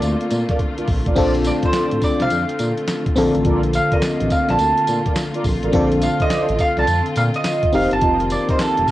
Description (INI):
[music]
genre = R&B, new jack swing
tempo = 105 BPM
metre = 4/4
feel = swing 64% on 16ths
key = unclear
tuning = A4 = 440 Hz
[part]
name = mandolin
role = melody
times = 0.0-8.9 s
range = A4 to A5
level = -20 LUFS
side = right 2 dB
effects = cassette tape
[part]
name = FM electric piano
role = accompaniment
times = 0.0-8.9 s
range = D3 to Bb4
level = -21 LUFS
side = left 2 dB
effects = chorus, cassette tape
[part]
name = warm studio string section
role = sustained chords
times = 0.0-8.9 s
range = D3 to F4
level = -27 LUFS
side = equal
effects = cassette tape
[part]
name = smooth synth bass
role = bass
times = 0.0-8.9 s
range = F1 to Bb2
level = -22 LUFS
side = equal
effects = none
[part]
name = boom bap sampler-style drum kit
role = drums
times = 0.0-8.9 s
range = crash cymbal, handclaps, hi-hat, kick drum, snare drum, tambourine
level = -23 LUFS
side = equal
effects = none
[part]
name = mellow synth brass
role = stabs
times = 0.5-8.6 s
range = F4 to Eb5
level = -26 LUFS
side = right 1 dB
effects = chorus, cassette tape, plate reverb
[sound]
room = moderate studio reverb, RT60 0.6 s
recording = home recording on cassette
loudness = -16 LUFS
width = side -15 dB against mid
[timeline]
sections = 0.0-8.9 A section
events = drum fill 0.6-1.2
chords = 0.0 Dm7; 7.7 F7sus4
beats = 0.02 0.59 | 1.16 1.74 2.31 2.88 | 3.45 4.02 4.59 5.16 | 5.74 6.31 6.88 7.45 | 8.02 8.59